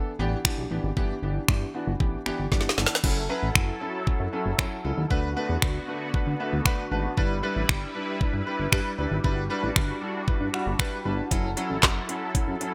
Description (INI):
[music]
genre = dance-pop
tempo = 116 BPM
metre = 4/4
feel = straight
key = unclear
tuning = A4 = 438 Hz
[part]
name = warm concert grand piano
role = accompaniment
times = 0.0-12.7 s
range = E3 to A5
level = -33 LUFS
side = equal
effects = analog chorus, sidechain pumping
[part]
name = chorused synth bass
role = bass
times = 0.2-12.6 s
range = F#1 to D3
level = -32 LUFS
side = equal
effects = sidechain pumping
[part]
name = smooth R&B drum kit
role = drums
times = 0.4-12.7 s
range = crash cymbal, finger snaps, handclaps, hi-hat, kick drum, snare drum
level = -26 LUFS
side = equal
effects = none
[part]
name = filtered supersaw swell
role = sustained chords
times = 3.0-12.7 s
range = D3 to A4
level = -37 LUFS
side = equal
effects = ensemble chorus, sidechain pumping
[sound]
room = light reverb, digital ambience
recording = bright 1980s-style digital production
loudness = -26 LUFS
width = mono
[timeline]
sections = 0.0-3.0 A section; 3.0-12.7 B section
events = drum fill 2.5-3.0; grand piano fill 6.1-7.2, 10.3-11.3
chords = 0.0 G6; 1.0 Em7/G; 3.0 F#m7; 5.1 D6; 7.2 G6; 9.2 Em7/G; 11.3 F#m7